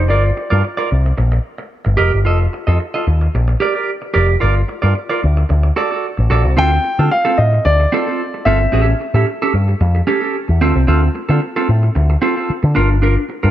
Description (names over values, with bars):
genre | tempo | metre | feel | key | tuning
disco | 112 BPM | 4/4 | straight | unclear | A4 = 440 Hz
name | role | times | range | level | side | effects
warm grand piano | melody | 0.0-1.1, 6.6-9.8 s | D5 to G5 | -18 LUFS | left 1 dB | none
clean electric guitar | accompaniment | 0.0-13.5 s | C4 to Eb5 | -18 LUFS | right 3 dB | none
picked electric bass with an envelope filter | bass | 0.0-13.5 s | F1 to D3 | -13 LUFS | equal | none
room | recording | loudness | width
light reverb, small room reverb | dark, warm production | -13 LUFS | side -12 dB against mid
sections
0.0-6.6 A section; 6.6-13.5 B section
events
none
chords
0.1 Gm7; 0.9 Cm7; 2.3 F7; 3.1 Ebmaj7; 4.4 Gm7; 5.2 D; 6.6 Dm7; 8.7 A7; 10.6 Dm7; 12.8 Gm7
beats
| 0.10 0.64 1.18 1.72 | 2.26 2.80 3.34 3.88 | 4.42 4.96 5.50 6.04 | 6.57 7.11 7.65 8.19 | 8.72 9.26 9.80 10.34 | 10.88 11.41 11.95 12.49 | 13.03